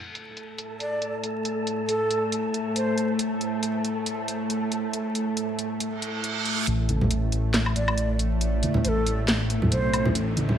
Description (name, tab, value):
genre	deep dubstep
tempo	138 BPM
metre	4/4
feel	swing 56% on 16ths, half-time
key	unclear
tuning	A4 = 440 Hz
part	bowed-like drone	sustained chords	0.7-10.6 s	A2 to A3	-29 LUFS	equal	built-in reverb
part	wind-like tuned noise texture	texture	0.2-6.7 s	A4 to A5	-33 LUFS	equal	built-in reverb
part	garage drum kit	drums	0.2-10.5 s	hi-hat, snare drum, woodblock	-28 LUFS	equal	low-pass filter on hats, low-pass filter on perc, low-pass filter on snare, low-pass filter on toms, low-pass filter on cymbals, low-pass filter on room
part	breathy shakuhachi	melody	0.8-3.1, 7.8-10.1 s	A4 to D5	-31 LUFS	right 1 dB	dub echo
part	reverse cymbal and riser	sound effects	6.0-10.6 s	none	-33 LUFS	right 4 dB	none
part	dark detuned saw bass	bass	6.7-10.6 s	A1 to B1	-25 LUFS	equal	none
part	congas	percussion	6.9-10.6 s	none	-26 LUFS	right 1 dB	none
room	moderate digital room reverb, RT60 1.0 s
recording	vinyl crackle, high-pass filter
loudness	-23 LUFS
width	side -9 dB against mid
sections	0.0-6.7 A section; 6.7-10.6 B section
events	reverse cymbal 6.0-6.7; build-up 6.7-10.6; riser 6.7-10.6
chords	0.0 N.C.; 6.7 Asus2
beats	0.15 0.58 1.02 | 1.45 1.89 2.32 2.76 | 3.19 3.63 4.06 4.50 | 4.93 5.37 5.80 6.24 | 6.67 7.11 7.54 7.98 | 8.41 8.85 9.28 9.71 | 10.15